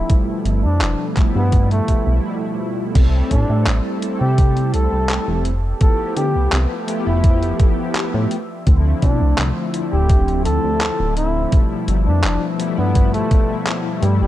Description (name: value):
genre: vaporwave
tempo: 84 BPM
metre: 4/4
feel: straight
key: C major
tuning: A4 = 440 Hz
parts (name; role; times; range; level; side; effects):
- breathy flugelhorn; melody; 0.0-14.3 s; G3 to A4; -24 LUFS; equal; tape echo
- mellow synth brass; accompaniment; 0.0-14.3 s; B2 to A4; -23 LUFS; left 1 dB; analog chorus
- warbly tape-like pad; sustained chords; 0.0-14.3 s; F3 to E6; -32 LUFS; left 2 dB; chorus, built-in reverb
- chorused synth bass; bass; 0.0-14.3 s; D1 to D3; -18 LUFS; equal; none
- detuned 8-bit digital drum machine; drums; 0.1-14.2 s; crash cymbal, handclaps, hi-hat; -25 LUFS; equal; small room ambience
- electronic kick drum; drums; 0.1-13.5 s; none; -15 LUFS; equal; small room ambience
room: digital ambience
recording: dark, warm production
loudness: -15 LUFS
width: side -14 dB against mid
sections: 0.0-3.0 A section; 3.0-14.3 B section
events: stop 2.2-3.0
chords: 0.1 G13; 3.0 C6; 5.5 Fmaj9#11; 8.3 Dm9; 11.5 G13